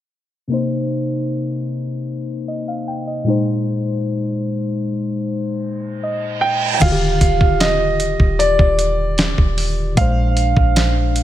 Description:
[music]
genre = contemporary R&B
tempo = 76 BPM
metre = 4/4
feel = straight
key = C minor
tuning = A4 = 440 Hz
[part]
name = muted felt-like synth keys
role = accompaniment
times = 0.5-11.2 s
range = Bb2 to G5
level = -21 LUFS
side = left 2 dB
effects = chorus
[part]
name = reverse cymbal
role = sound effects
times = 6.2-6.8 s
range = none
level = -26 LUFS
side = right 6 dB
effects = none
[part]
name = warm concert grand piano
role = melody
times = 6.4-11.2 s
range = D5 to G5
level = -19 LUFS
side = right 2 dB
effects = tape echo
[part]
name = clean 808-style bass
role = bass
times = 6.8-11.2 s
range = Eb1 to Bb1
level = -19 LUFS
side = equal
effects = none
[part]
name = dusty soul sampler-style drum kit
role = drums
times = 6.8-11.2 s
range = crash cymbal, hi-hat, kick drum, snare drum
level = -17 LUFS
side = equal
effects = none
[sound]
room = light reverb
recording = low-pass filter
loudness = -16 LUFS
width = side -12 dB against mid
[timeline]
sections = 0.5-6.8 A section; 6.8-11.2 B section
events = filter sweep 0.5-6.8; synth keys fill 5.6-6.8; reverse cymbal 6.2-6.8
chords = 0.5 Cm7; 3.3 Bb9sus4; 6.8 Ebmaj9; 10.0 Bb9

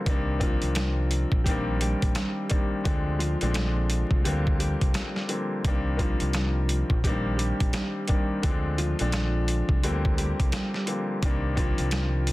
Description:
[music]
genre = hip hop, boom-bap hip-hop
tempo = 86 BPM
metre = 4/4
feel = swing 61% on 16ths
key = C minor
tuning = A4 = 441 Hz
[part]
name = mellow electric guitar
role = melody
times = 0.0-12.3 s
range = F3 to G4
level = -33 LUFS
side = equal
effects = high-pass filter, low-pass filter, ping-pong delay
[part]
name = warm grand piano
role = accompaniment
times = 0.0-12.3 s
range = D3 to D4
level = -30 LUFS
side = left 2 dB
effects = high-pass filter, low-pass filter
[part]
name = deep dub fingered electric bass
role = bass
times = 0.1-12.3 s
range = Bb1 to D2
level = -27 LUFS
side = equal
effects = none
[part]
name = boom bap sampler-style drum kit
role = drums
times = 0.1-12.3 s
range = hi-hat, kick drum, snare drum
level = -27 LUFS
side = equal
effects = none
[sound]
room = light reverb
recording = dense, heavily limited modern master, vinyl crackle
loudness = -23 LUFS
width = side -18 dB against mid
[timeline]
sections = 0.0-12.3 A section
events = none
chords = 0.1 Cm7; 2.9 Dm7b5; 4.2 Bb; 5.6 Cm7; 8.4 Dm7b5; 9.8 Bb; 11.2 Cm7

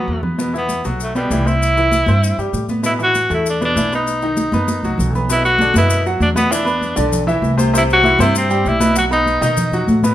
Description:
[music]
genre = latin, salsa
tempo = 196 BPM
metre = 4/4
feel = straight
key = unclear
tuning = A4 = 441 Hz
[part]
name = bright tenor saxophone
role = melody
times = 0.0-9.9 s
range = G3 to F#4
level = -17 LUFS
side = equal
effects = none
[part]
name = bright baby grand piano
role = accompaniment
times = 0.0-10.1 s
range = B2 to B5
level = -20 LUFS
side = equal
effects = none
[part]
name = upright bass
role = bass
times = 0.0-10.1 s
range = B1 to B2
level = -20 LUFS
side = equal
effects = none
[part]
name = congas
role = percussion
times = 0.2-10.1 s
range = none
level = -22 LUFS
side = equal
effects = none
[part]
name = maracas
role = percussion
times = 0.4-10.1 s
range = none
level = -28 LUFS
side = left 6 dB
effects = none
[sound]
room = moderate large studio reverb, RT60 0.9 s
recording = minimal, uncompressed stereo recording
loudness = -14 LUFS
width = side -12 dB against mid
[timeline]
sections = 0.0-5.3 A section; 5.3-10.1 B section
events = drum fill 0.0-0.4, 4.7-5.3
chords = 0.4 Emadd9; 1.6 C; 2.8 Asus2; 4.1 B; 5.3 Bm; 6.5 E5; 7.7 C; 9.0 B

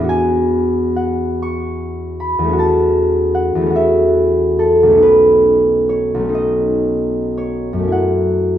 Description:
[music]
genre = classical, solo harp piece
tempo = 36-53 BPM (dotted quarters)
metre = 6/8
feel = rubato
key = F# dorian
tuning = A4 = 440 Hz
[part]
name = concert harp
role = solo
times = 0.0-8.6 s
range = B1 to C#6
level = -13 LUFS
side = equal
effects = none
[sound]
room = moderate recital hall reverb, RT60 1.6 s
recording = minimal, uncompressed stereo recording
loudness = -12 LUFS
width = side -11 dB against mid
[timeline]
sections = 0.0-8.6 A section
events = none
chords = 0.1 E9; 2.6 F#m7/E; 5.0 B9; 7.9 F#m7

